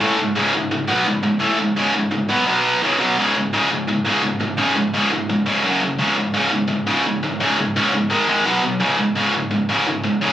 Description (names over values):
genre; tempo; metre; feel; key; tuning
metal; 170 BPM; 4/4; straight; C# minor; A4 = 440 Hz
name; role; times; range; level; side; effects
tight distorted guitar; solo; 0.0-10.3 s; C#2 to B3; -16 LUFS; equal; distortion
room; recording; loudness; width
light reverb; recorded on a phone in the room, studio reverb, compression; -16 LUFS; side -12 dB against mid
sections
0.0-3.2 A section; 3.2-10.3 B section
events
none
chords
0.0 C#m; 2.5 B5; 2.8 C#5; 5.6 F#5; 6.0 C#5; 8.1 G#5; 8.5 B5; 8.8 C#5